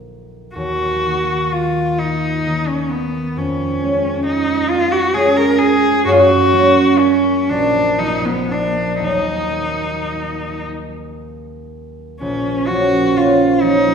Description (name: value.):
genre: classical, romantic duo for cello and harp.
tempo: 37-45 BPM (dotted quarters).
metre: 6/8.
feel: rubato.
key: Eb minor.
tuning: A4 = 443 Hz.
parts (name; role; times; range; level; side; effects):
concert harp; accompaniment; 0.0-13.9 s; Bb1 to Db4; -17 LUFS; right 2 dB; none.
warm cello; melody; 0.6-13.9 s; Cb4 to Bb4; -17 LUFS; left 1 dB; none.
room: wet scoring stage reverb, RT60 1.6 s.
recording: heard from further back in the room.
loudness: -14 LUFS.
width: side -6 dB against mid.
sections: 0.0-12.2 A section; 12.2-13.9 B section.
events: none.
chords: 0.0 Bb; 0.6 Ebm; 3.4 Db/F; 6.0 Gb; 7.5 Bb5; 9.0 Ebm; 12.2 Bbm.